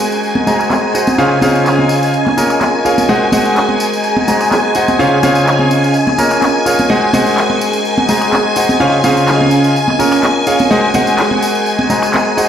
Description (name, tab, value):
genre	piano house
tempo	126 BPM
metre	4/4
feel	swing 53% on 16ths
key	Ab mixolydian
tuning	A4 = 444 Hz
part	string machine, violins	sustained chords	0.0-12.5 s	Ab5	-17 LUFS	equal	ensemble chorus
part	clear concert grand piano	riff	0.0-12.5 s	Db3 to Bb5	-13 LUFS	equal	digital delay
part	tambourine and congas	percussion	0.0-12.5 s	none	-19 LUFS	right 1 dB	none
part	ethereal airy pad	texture	0.0-12.5 s	Db4 to C6	-18 LUFS	equal	ensemble chorus, built-in reverb
part	electronic shaker, finger snaps and handclaps	drums	0.1-12.4 s	none	-20 LUFS	equal	overdrive, low-pass filter on perc, small room ambience, low-pass filter on snare
room	light reverb, small room ambience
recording	played on a big sound system in a bare room, stone room reverb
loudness	-10 LUFS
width	side -9 dB against mid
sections	0.0-12.5 A section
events	none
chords	0.0 Ab7; 1.2 Dbmaj7; 2.1 Bbm7; 3.1 Ab7; 5.0 Dbmaj7; 5.9 Bbm7; 6.9 Ab7; 8.8 Dbmaj7; 9.8 Bbm7; 10.7 Ab7